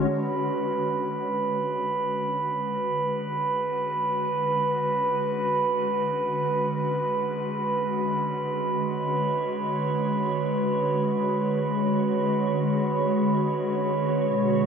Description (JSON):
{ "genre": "ambient", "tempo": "free time", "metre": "none", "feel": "none", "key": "B dorian", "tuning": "A4 = 440 Hz", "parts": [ { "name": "glassy FM pad", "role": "sustained chords", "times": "0.0-14.7 s", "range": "B2 to C#5", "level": "-26 LUFS", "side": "equal", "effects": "ensemble chorus, built-in reverb" }, { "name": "glass harmonica", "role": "texture", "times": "0.1-14.7 s", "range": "B4 to B5", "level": "-26 LUFS", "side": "right 2 dB", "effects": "stereo widening" } ], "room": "wet huge ambient reverb, RT60 8.0 s", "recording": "dark, warm production", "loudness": "-23 LUFS", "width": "side -6 dB against mid", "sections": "0.1-14.7 A section", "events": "fade-in on ambient pad 0.1-14.7; fade-out on glass harmonica 0.1-14.7", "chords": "0.1 Bm69" }